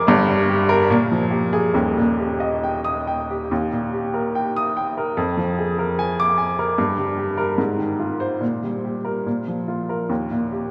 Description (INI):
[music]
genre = classical, romantic character piece for solo piano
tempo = 67-76 BPM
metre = 2/4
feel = rubato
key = Eb major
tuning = A4 = 440 Hz
[part]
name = clear upright piano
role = solo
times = 0.0-10.7 s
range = Eb1 to Eb6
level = -21 LUFS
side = equal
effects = none
[sound]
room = wet cathedral reverb, RT60 4.3 s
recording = recorded in a church or concert hall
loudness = -21 LUFS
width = mono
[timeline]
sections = 0.0-3.5 A section; 3.5-10.7 B section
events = none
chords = 0.1 Gm; 0.9 Bb5; 1.7 Eb; 5.2 Bb7/F; 6.8 Gm; 7.6 Fm7/Ab; 8.4 Gm/Bb; 9.3 Bb5; 10.1 Eb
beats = | 0.06 0.89 | 1.74 2.61 | 3.50 4.34 | 5.17 5.98 | 6.78 7.58 | 8.41 9.25 | 10.09